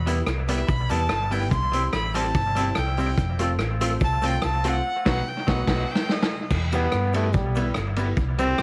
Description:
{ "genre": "ska", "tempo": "144 BPM", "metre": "4/4", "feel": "straight", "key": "E harmonic minor", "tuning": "A4 = 439 Hz", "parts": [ { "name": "clear violin", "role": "melody", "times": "0.0-6.5 s", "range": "D#5 to C6", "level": "-30 LUFS", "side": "equal", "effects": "none" }, { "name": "fingered electric bass", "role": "bass", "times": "0.0-8.6 s", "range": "F1 to G2", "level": "-28 LUFS", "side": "equal", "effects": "none" }, { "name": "semi-hollow electric guitar", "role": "accompaniment", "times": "0.1-8.5 s", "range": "F#3 to F4", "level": "-34 LUFS", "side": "equal", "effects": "spring reverb, tape echo" }, { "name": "dark upright piano", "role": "stabs", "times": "0.1-8.5 s", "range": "B3 to C5", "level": "-34 LUFS", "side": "equal", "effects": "none" }, { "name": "vintage drum kit", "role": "drums", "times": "0.1-8.6 s", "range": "crash cymbal, hi-hat, kick drum, ride cymbal, rim click, snare drum", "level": "-29 LUFS", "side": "equal", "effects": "tape echo" }, { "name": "cabasa", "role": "percussion", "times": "0.1-8.6 s", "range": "none", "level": "-56 LUFS", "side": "equal", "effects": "none" }, { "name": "bright trombone", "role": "melody", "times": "6.7-8.6 s", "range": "G3 to C4", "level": "-28 LUFS", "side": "equal", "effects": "none" } ], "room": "light reverb, small room ambience", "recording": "vinyl crackle", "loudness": "-24 LUFS", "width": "mono", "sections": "0.0-6.5 A section; 6.5-8.6 A section", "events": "violin solo 0.0-6.5; band accent 4.8-6.5; drum fill 5.7-6.5; trombone solo 6.5-8.6", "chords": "0.0 Em; 1.5 C; 3.2 F; 4.8 B; 6.5 Em" }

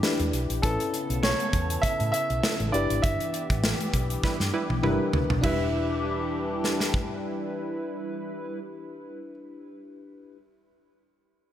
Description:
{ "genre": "1980s-style pop", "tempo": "100 BPM", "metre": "4/4", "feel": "swing 55% on 16ths", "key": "E dorian", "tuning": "A4 = 438 Hz", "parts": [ { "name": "clear baby grand piano", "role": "melody", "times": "0.0-9.3 s", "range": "G4 to E5", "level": "-31 LUFS", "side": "right 1 dB", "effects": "digital delay" }, { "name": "FM electric piano with auto-pan", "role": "accompaniment", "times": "0.0-10.4 s", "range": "C#4 to B4", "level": "-32 LUFS", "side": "left 4 dB", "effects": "none" }, { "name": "phased analog pad", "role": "sustained chords", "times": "0.0-8.6 s", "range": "C#3 to A4", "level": "-36 LUFS", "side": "left 1 dB", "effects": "phaser, chorus" }, { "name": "modern studio drum kit", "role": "drums", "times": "0.0-7.1 s", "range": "hi-hat, kick drum, ride cymbal, snare drum, toms", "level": "-28 LUFS", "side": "equal", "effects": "gated reverb" }, { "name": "vintage muted fingered electric bass", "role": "bass", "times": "0.2-9.3 s", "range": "G1 to A2", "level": "-30 LUFS", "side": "equal", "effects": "none" }, { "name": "funky polysynth comp", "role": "stabs", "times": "4.2-8.6 s", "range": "G3 to B4", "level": "-32 LUFS", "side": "right 4 dB", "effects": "chorus, digital delay" } ], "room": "moderate lush hall reverb, RT60 2.6 s", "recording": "none", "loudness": "-24 LUFS", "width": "side -11 dB against mid", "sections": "0.0-5.4 A section; 5.4-7.8 B section", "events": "band accent 3.0-5.4; drum fill 4.2-5.4", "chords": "0.0 Em7; 0.6 Aadd9; 2.7 G6; 5.4 Em7" }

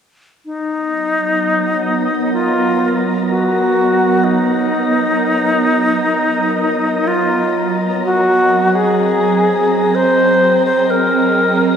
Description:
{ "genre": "ambient", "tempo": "63 BPM", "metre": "4/4", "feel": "straight", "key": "B lydian", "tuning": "A4 = 440 Hz", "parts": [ { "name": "ethereal airy pad", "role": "sustained chords", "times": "1.1-11.8 s", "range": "F#3 to D#5", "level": "-17 LUFS", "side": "right 2 dB", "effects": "ensemble chorus, built-in reverb, shimmer reverb" }, { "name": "wind-like tuned noise texture", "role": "texture", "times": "1.0-11.8 s", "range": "A#5", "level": "-26 LUFS", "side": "equal", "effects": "built-in reverb, shimmer reverb" }, { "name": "bright reedy alto flute", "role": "melody", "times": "0.5-11.8 s", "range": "D#4 to B#4", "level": "-14 LUFS", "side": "left 1 dB", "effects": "shimmer reverb, diffuse ambient delay" } ], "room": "wet concert hall reverb, RT60 2.3 s", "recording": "cassette tape", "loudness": "-12 LUFS", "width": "side -7 dB against mid", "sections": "0.4-11.8 A section", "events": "none", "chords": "0.4 Bmaj7; 8.0 G#7" }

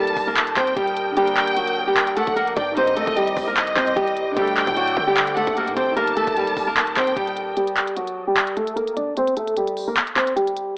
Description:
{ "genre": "hip hop, trap", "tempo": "150 BPM", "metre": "4/4", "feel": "half-time", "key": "unclear", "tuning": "A4 = 440 Hz", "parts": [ { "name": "flamenco guitar", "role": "melody", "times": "0.0-10.7 s", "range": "F#3 to D5", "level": "-21 LUFS", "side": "equal", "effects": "low-pass filter" }, { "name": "warm studio violin section", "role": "second line", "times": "0.0-7.5 s", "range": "Eb5 to A5", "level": "-25 LUFS", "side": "equal", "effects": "tape echo" }, { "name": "felt-muted upright piano", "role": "accompaniment", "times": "0.0-7.6 s", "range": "D3 to Bb4", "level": "-30 LUFS", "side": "equal", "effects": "low-pass filter" }, { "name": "ethereal airy pad", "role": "sustained chords", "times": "0.0-7.6 s", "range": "A4 to Eb6", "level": "-33 LUFS", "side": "equal", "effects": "ensemble chorus, built-in reverb" }, { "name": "hard-hitting 808-style bass", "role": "bass", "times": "0.0-7.6 s", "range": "D1 to D3", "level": "-32 LUFS", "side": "equal", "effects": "none" }, { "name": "trap drum kit", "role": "drums", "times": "0.1-10.7 s", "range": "handclaps, hi-hat, kick drum", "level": "-22 LUFS", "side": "equal", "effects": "none" } ], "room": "light reverb, studio ambience", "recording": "dry, gritty hardware recording, transformer saturation, AM radio sound", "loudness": "-18 LUFS", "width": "side -31 dB against mid", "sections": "0.0-7.6 A section; 7.6-10.8 B section", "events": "kick muted 1.2-2.0, 7.6-10.8", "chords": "0.0 Eb; 1.2 Gm; 2.8 Cmadd9; 4.4 Dsus4; 6.0 Eb; 7.6 N.C.; 9.2 C5" }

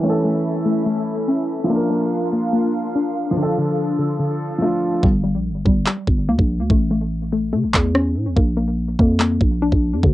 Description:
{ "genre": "hip hop, drill", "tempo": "144 BPM", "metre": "4/4", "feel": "half-time", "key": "unclear", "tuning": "A4 = 439 Hz", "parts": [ { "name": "dark concert grand piano", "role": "accompaniment", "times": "0.0-5.1 s", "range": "E3 to Bb4", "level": "-21 LUFS", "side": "right 1 dB", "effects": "low-pass filter" }, { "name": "hollow soft pad", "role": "sustained chords", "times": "0.0-5.0 s", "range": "C#4 to F5", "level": "-25 LUFS", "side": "equal", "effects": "ensemble chorus" }, { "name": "soft round pluck", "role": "arpeggios", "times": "0.0-10.1 s", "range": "D3 to D4", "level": "-21 LUFS", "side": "left 2 dB", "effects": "chorus, low-pass filter, tape echo" }, { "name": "growling 808-style bass", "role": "bass", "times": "5.0-10.1 s", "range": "G1 to C#3", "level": "-21 LUFS", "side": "equal", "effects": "none" }, { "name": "drill drum kit", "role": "drums", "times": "5.0-10.1 s", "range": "handclaps, kick drum, rim click", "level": "-17 LUFS", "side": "equal", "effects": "none" } ], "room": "light reverb", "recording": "home recording on cassette, low-pass filter", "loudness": "-17 LUFS", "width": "side -15 dB against mid", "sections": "0.0-5.0 A section; 5.0-10.1 B section", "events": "filter sweep 0.0-5.0; hi-hats muted 5.0-10.1", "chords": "0.0 A; 1.7 Bb; 3.4 Dm; 5.0 Gm; 6.7 A; 8.4 Bb" }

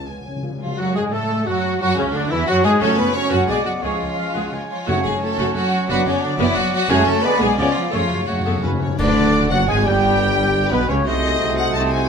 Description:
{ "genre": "classical, dramatic, fast romantic movement for symphony orchestra", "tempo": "175 BPM", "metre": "3/4", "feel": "rubato", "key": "F# minor", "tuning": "A4 = 440 Hz", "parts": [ { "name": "rich chamber violin section", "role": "melody", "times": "0.0-12.1 s", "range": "C#4 to A5", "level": "-28 LUFS", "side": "left 6 dB", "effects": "none" }, { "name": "dark French horn section", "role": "sustained chords", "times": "0.0-12.1 s", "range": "B2 to G#4", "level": "-28 LUFS", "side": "left 6 dB", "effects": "none" }, { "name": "dark symphonic cello section", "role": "bass", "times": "0.0-12.1 s", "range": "C#2 to C#4", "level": "-25 LUFS", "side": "right 2 dB", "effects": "none" }, { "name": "rich symphonic double bass section", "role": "bass", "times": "0.0-12.1 s", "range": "F#1 to A2", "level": "-26 LUFS", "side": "right 3 dB", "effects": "none" }, { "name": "timpani", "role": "percussion", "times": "0.0-0.7, 2.8-5.4, 7.9-8.9 s", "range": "F#2 to C#3", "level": "-28 LUFS", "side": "left 2 dB", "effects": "none" }, { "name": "rich chamber violin section", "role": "second line", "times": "0.6-12.1 s", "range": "C#4 to C#5", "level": "-25 LUFS", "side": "left 2 dB", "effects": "none" }, { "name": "small flute group", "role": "second line", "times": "0.6-12.1 s", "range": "B4 to C#6", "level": "-26 LUFS", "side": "right 1 dB", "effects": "none" }, { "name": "mellow clarinet", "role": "second line", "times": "0.8-12.1 s", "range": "A3 to A4", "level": "-29 LUFS", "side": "left 3 dB", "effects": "none" }, { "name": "mellow oboe", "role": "second line", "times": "0.8-12.1 s", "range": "C#4 to G#5", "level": "-28 LUFS", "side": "equal", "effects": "none" }, { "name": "rich symphonic viola section", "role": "accompaniment", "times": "0.8-12.0 s", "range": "C#3 to A4", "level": "-26 LUFS", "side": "equal", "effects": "none" }, { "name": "warm bassoon", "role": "accompaniment", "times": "0.8-12.1 s", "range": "B2 to A3", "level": "-28 LUFS", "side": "right 1 dB", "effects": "none" }, { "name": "mellow trombone section", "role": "sustained chords", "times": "0.8-12.1 s", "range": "F#2 to B3", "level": "-29 LUFS", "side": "right 4 dB", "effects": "none" }, { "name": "dark trumpet section", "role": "stabs", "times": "0.8-12.1 s", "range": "C#4 to G#5", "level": "-27 LUFS", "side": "right 1 dB", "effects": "none" }, { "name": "dark tuba", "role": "bass", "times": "9.0-12.1 s", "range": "F#1 to D2", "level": "-26 LUFS", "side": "right 4 dB", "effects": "none" }, { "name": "clash cymbals and concert bass drum", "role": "percussion", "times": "9.0-9.6 s", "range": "none", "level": "-31 LUFS", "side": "left 1 dB", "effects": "none" } ], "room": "moderate scoring stage reverb, RT60 1.8 s", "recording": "none", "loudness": "-16 LUFS", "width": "side -6 dB against mid", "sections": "0.8-9.0 A section; 9.0-12.1 B section", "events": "timpani fill 0.0-0.8, 7.9-9.0; band accent 9.0-9.3", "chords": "0.0 C#; 0.8 F#m; 1.8 E13/C#; 2.8 F#m; 3.5 G#dim/B; 3.8 C#; 4.9 F#m; 5.9 Bm/F#; 6.9 F#m; 7.2 G#dim/D; 7.6 C#7b9; 7.9 F#m; 9.0 Bm/D; 10.0 G; 11.1 Cdim7" }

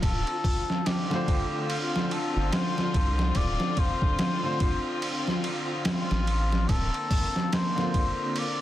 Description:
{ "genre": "trip hop", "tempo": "72 BPM", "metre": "4/4", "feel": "swing 59% on 16ths", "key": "D minor", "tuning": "A4 = 441 Hz", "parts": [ { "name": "trumpet with cup mute", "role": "melody", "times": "0.0-8.6 s", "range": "F4 to D5", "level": "-32 LUFS", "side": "left 2 dB", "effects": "tape echo" }, { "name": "dark studio string section", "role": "sustained chords", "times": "0.0-8.6 s", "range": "D3 to F4", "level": "-34 LUFS", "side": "left 2 dB", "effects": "none" }, { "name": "round analog bass", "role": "bass", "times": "0.0-6.9 s", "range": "D1 to C2", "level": "-27 LUFS", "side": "equal", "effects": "none" }, { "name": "trip hop sampler-style drum kit", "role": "drums", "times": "0.0-8.6 s", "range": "hi-hat, kick drum, ride cymbal, snare drum", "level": "-27 LUFS", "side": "equal", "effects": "overdrive" }, { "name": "wind-like tuned noise texture", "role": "texture", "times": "0.0-8.6 s", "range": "F4", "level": "-41 LUFS", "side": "right 2 dB", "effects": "none" }, { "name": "felt-muted upright piano", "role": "accompaniment", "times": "1.1-8.6 s", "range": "D3 to C5", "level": "-34 LUFS", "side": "equal", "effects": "tremolo, tape echo" } ], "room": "light reverb", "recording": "dense, heavily limited modern master, vinyl crackle", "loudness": "-24 LUFS", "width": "side -13 dB against mid", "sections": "0.0-8.6 A section", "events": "none", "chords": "0.0 Dm7; 6.7 Bbadd9/D" }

